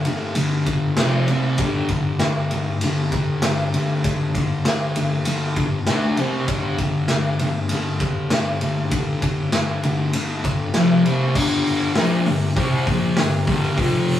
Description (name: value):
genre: garage rock duo or trio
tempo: 98 BPM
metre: 4/4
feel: straight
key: unclear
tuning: A4 = 440 Hz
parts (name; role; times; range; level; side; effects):
- thick fuzz guitar; riff; 0.0-14.2 s; F2 to D4; -20 LUFS; left 1 dB; distortion
- raw garage drum kit; drums; 0.0-14.2 s; crash cymbal, hi-hat, kick drum, ride cymbal, snare drum; -23 LUFS; left 1 dB; none
room: moderate studio reverb, RT60 0.6 s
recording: rough rehearsal-room recording, tube saturation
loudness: -18 LUFS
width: side -11 dB against mid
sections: 0.0-11.4 A section; 11.4-14.2 B section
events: none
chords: 0.0 G5; 1.0 F5; 1.3 C5; 1.6 G5; 5.9 D5; 6.2 C5; 6.5 G5; 10.8 F5; 11.1 C5; 11.4 G5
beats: 0.38 0.99 | 1.60 2.21 2.83 3.44 | 4.05 4.66 5.27 5.88 | 6.49 7.10 7.71 8.32 | 8.93 9.54 10.14 10.75 | 11.36 11.96 12.57 13.18 | 13.78